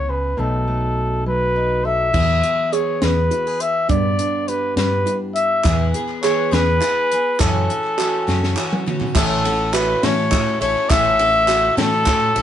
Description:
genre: indie folk with a building arrangement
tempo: 68 BPM (dotted quarters)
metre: 6/8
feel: straight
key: A major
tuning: A4 = 439 Hz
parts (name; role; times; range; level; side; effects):
- mellow trumpet; melody; 0.0-12.4 s; A4 to E5; -19 LUFS; left 2 dB; none
- fingerpicked steel-string acoustic guitar; accompaniment; 0.0-5.6 s; G2 to A4; -26 LUFS; left 1 dB; none
- fingered electric bass; bass; 0.0-12.4 s; A1 to A2; -22 LUFS; equal; none
- kalimba; arpeggios; 2.1-12.4 s; D4 to G#4; -27 LUFS; right 7 dB; none
- compact cocktail drum kit; drums; 2.1-12.4 s; crash cymbal, hi-hat, kick drum, ride cymbal, snare drum, toms; -22 LUFS; equal; none
- picked twelve-string acoustic guitar; accompaniment; 5.6-12.4 s; F#2 to A4; -26 LUFS; left 2 dB; none
- group handclap; percussion; 5.6-12.3 s; none; -28 LUFS; right 2 dB; none
- warm upright piano; accompaniment; 9.1-12.4 s; A1 to F#5; -30 LUFS; right 5 dB; none
room: light reverb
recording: band playing live in one room, nothing above 11.0 kHz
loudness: -16 LUFS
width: side -10 dB against mid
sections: 0.0-2.1 A section; 2.1-9.2 B section; 9.2-12.4 C section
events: drum fill 8.3-9.2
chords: 0.4 B7; 2.1 E; 3.9 G; 5.7 E; 7.4 F#m7; 9.2 A

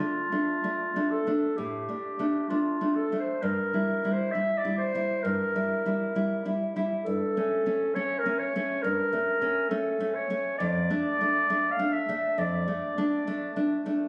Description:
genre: romantic duo for clarinet and classical guitar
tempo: 67 BPM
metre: 4/4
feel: rubato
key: D minor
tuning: A4 = 440 Hz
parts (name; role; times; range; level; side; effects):
- mellow clarinet; melody; 0.0-13.7 s; F4 to F5; -30 LUFS; equal; none
- nylon-string guitar; accompaniment; 0.0-14.1 s; F2 to E4; -31 LUFS; equal; none
room: moderate studio reverb, RT60 0.6 s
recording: recorded on a phone in the room, studio reverb, nothing above 10.3 kHz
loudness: -28 LUFS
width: mono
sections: 0.0-14.1 A section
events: none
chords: 0.0 Dm; 3.4 Edim/G; 7.0 A7/G; 10.6 Dm/F

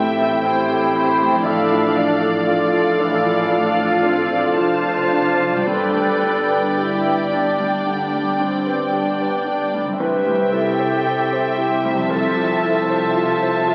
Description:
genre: cinematic, emotional film score for orchestra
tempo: 54-60 BPM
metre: 4/4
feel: rubato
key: unclear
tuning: A4 = 440 Hz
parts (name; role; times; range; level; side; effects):
- mellow clarinet; second line; 0.0-13.7 s; E4 to E5; -25 LUFS; equal; none
- muted symphonic violin section; second line; 0.0-13.7 s; C5 to A5; -24 LUFS; equal; none
- bright concert grand piano; accompaniment; 0.0-13.7 s; C2 to E5; -25 LUFS; equal; none
- muted symphonic viola section; accompaniment; 0.0-13.7 s; E3 to C5; -26 LUFS; equal; none
- concert harp; arpeggios; 0.0-13.7 s; G2 to E5; -32 LUFS; equal; none
- muted symphonic cello section; bass; 0.0-13.7 s; F2 to C3; -36 LUFS; equal; none
- muted symphonic double bass section; bass; 0.0-13.7 s; F1 to C2; -33 LUFS; equal; none
room: wet concert hall reverb, RT60 2.1 s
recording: very old 78 rpm record, vinyl crackle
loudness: -18 LUFS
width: mono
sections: 0.0-13.7 A section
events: none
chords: 0.0 Am7; 1.5 Dm/A; 5.7 G; 10.0 Cmaj7; 12.1 Fmaj7/C

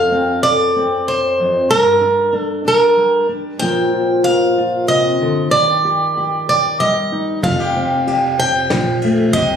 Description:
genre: acoustic folk duo or small band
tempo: 94 BPM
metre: 3/4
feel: straight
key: F mixolydian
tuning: A4 = 444 Hz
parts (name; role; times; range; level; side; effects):
- picked plugged-in swing-style acoustic guitar; melody; 0.0-9.6 s; Bb4 to G5; -15 LUFS; right 2 dB; plate reverb
- fingerpicked steel-string acoustic guitar; accompaniment; 0.0-9.6 s; F2 to Bb4; -18 LUFS; left 2 dB; none
- upright bass; bass; 7.4-9.6 s; F1 to C2; -24 LUFS; right 2 dB; none
- soft brush drum kit; drums; 7.4-9.5 s; kick drum, ride cymbal, snare drum; -25 LUFS; right 1 dB; none
room: moderate studio reverb, RT60 0.5 s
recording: recorded on a phone in the room, studio reverb, compression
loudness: -13 LUFS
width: side -7 dB against mid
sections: 0.0-9.6 A section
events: none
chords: 0.0 F; 1.7 Gm; 3.6 Bbsus2; 5.5 Eb; 7.4 Fadd9

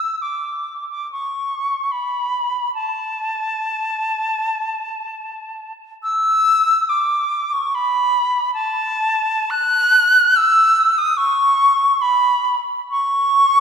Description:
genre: classical, free, expressive piece for unaccompanied flute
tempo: 71 BPM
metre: 4/4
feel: uneven beats, rubato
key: unclear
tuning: A4 = 440 Hz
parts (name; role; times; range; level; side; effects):
- silver concert flute; solo; 0.0-13.6 s; A5 to F#6; -16 LUFS; equal; none
room: wet church reverb, RT60 2.7 s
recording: minimal, uncompressed stereo recording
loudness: -15 LUFS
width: side -7 dB against mid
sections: 0.0-13.6 A section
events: none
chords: none

